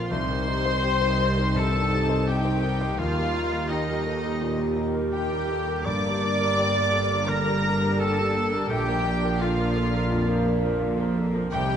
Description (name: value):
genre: cinematic, emotional film score for orchestra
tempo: 84 BPM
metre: 4/4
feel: rubato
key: C dorian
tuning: A4 = 440 Hz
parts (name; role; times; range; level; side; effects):
- warm studio violin section; melody; 0.0-11.8 s; Eb5 to D6; -31 LUFS; left 2 dB; none
- clear oboe; second line; 0.0-11.8 s; Eb4 to D5; -32 LUFS; right 1 dB; none
- dark studio violin section; second line; 0.0-11.8 s; Eb4 to D5; -32 LUFS; left 3 dB; none
- warm clarinet; second line; 0.0-11.8 s; Eb4 to D5; -32 LUFS; equal; none
- rich studio viola section; accompaniment; 0.0-11.8 s; C3 to Bb4; -34 LUFS; right 2 dB; none
- warm grand piano; accompaniment; 0.0-11.8 s; Bb1 to C5; -31 LUFS; left 1 dB; none
- mellow French horn section; sustained chords; 0.1-11.8 s; G3 to G4; -32 LUFS; left 2 dB; none
- dark studio double bass section; bass; 0.1-11.8 s; G1 to Eb2; -28 LUFS; right 1 dB; none
- warm studio cello section; bass; 0.1-11.8 s; C2 to C3; -32 LUFS; right 1 dB; none
room: wet scoring stage reverb, RT60 2.0 s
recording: nothing above 10.5 kHz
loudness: -22 LUFS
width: side -8 dB against mid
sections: 0.1-11.8 A section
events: none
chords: 0.1 Cm; 3.0 Eb; 5.9 Gm; 8.7 Bb